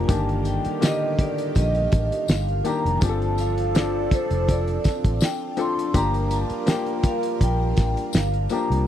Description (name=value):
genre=lush 1970s-style soul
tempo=82 BPM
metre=4/4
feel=swing 54% on 16ths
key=G minor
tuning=A4 = 439 Hz
part: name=vibraphone with medium hard mallets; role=melody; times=0.0-8.9 s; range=C5 to C6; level=-28 LUFS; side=right 1 dB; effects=none
part: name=clear grand piano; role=accompaniment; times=0.0-8.9 s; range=D3 to A4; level=-28 LUFS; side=left 6 dB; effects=none
part: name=string machine, violins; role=sustained chords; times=0.0-8.8 s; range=G3 to Bb4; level=-35 LUFS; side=equal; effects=ensemble chorus
part: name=vintage muted fingered electric bass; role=bass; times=0.0-8.9 s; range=F1 to C2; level=-24 LUFS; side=equal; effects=none
part: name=mellow horn section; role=stabs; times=0.1-8.5 s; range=D3 to Bb4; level=-31 LUFS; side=right 11 dB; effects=none
part: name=cloth-damped thuddy drum kit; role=drums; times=0.1-8.9 s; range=hi-hat, kick drum, snare drum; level=-21 LUFS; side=equal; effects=none
part: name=tambourine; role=percussion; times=0.1-8.7 s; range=none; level=-39 LUFS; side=left 20 dB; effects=none
room=little or no reverb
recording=dry, close 1970s-style studio recording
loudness=-20 LUFS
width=side -10 dB against mid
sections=0.0-8.9 A section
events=none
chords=0.1 Ebmaj7/G; 3.0 Dm7; 5.9 Gm7